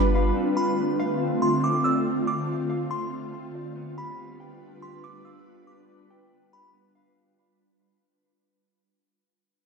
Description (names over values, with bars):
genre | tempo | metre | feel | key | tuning
hip hop | 141 BPM | 4/4 | half-time | unclear | A4 = 441 Hz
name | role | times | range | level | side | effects
ethereal airy pad | sustained chords | 0.0-7.1 s | D3 to B4 | -26 LUFS | equal | ensemble chorus, built-in reverb
mellow electric guitar | arpeggios | 0.0-7.2 s | B3 to G5 | -33 LUFS | equal | low-pass filter, ping-pong delay
delicate synth tine bell | melody | 0.6-6.7 s | B5 to E6 | -30 LUFS | right 1 dB | chorus, phaser, low-pass filter, ping-pong delay
room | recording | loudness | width
wet lush hall reverb, RT60 1.6 s, digital ambience | dreamy mix soaked in reverb | -23 LUFS | side -5 dB against mid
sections
0.0-7.2 A section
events
fade-out 0.0-7.2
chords
0.4 Dm7; 3.8 G7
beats
| 0.36 0.78 1.21 1.63 | 2.06 2.48 2.91 3.33 | 3.76 4.19 4.61 5.04 | 5.46 5.89 6.31 6.74